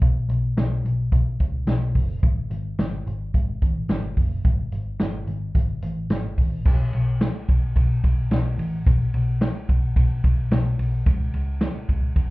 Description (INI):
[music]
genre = jangly indie pop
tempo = 109 BPM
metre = 4/4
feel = straight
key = unclear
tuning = A4 = 435 Hz
[part]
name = vintage muted picked electric bass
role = bass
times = 0.0-12.3 s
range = F#1 to C#2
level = -23 LUFS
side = equal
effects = none
[part]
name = vintage drum kit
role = drums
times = 0.0-12.3 s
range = crash cymbal, hi-hat, kick drum, ride cymbal, snare drum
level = -21 LUFS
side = equal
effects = none
[sound]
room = light reverb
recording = heard muffled through a wall, club reverb, EQ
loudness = -20 LUFS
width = side -20 dB against mid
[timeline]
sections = 0.0-6.7 A section; 6.7-12.3 B section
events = none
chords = none